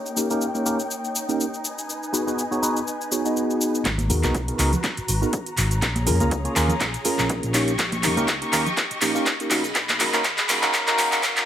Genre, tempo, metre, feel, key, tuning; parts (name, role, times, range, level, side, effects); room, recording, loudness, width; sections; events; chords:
filtered disco house; 122 BPM; 4/4; swing 55% on 16ths; G# dorian; A4 = 440 Hz
rich studio string section; sustained chords; 0.0-11.5 s; A#3 to C#6; -30 LUFS; left 1 dB; vintage 12-bit sampler grit, sidechain pumping, low-pass filter
house drum kit; drums; 0.1-11.5 s; cabasa, handclaps, hi-hat; -24 LUFS; equal; sidechain pumping on perc, studio reverb, sidechain pumping on hats
tine electric piano; accompaniment; 0.2-11.5 s; A#3 to D#5; -25 LUFS; equal; phaser, sidechain pumping, low-pass filter
overdriven fingered electric bass; bass; 3.9-11.3 s; G#1 to F#2; -25 LUFS; equal; tube saturation, sidechain pumping, low-pass filter
electronic kick drum; drums; 3.9-11.3 s; -29 LUFS; equal; high-pass filter on kick, studio reverb
tambourine and congas; percussion; 3.9-11.5 s; -33 LUFS; right 2 dB; sidechain pumping on perc, low-pass filter on perc
moderate plate reverb, RT60 1.6 s, digital ambience; high-pass filter; -20 LUFS; side -10 dB against mid
0.0-3.9 A section; 3.9-11.5 B section
build-up 3.9-11.5; drum fill 3.9-11.5; filter sweep 3.9-11.5
0.0 D#7/A#; 1.6 B6; 3.9 G#m9; 5.8 A#m7; 7.5 D#7/A#; 9.5 B6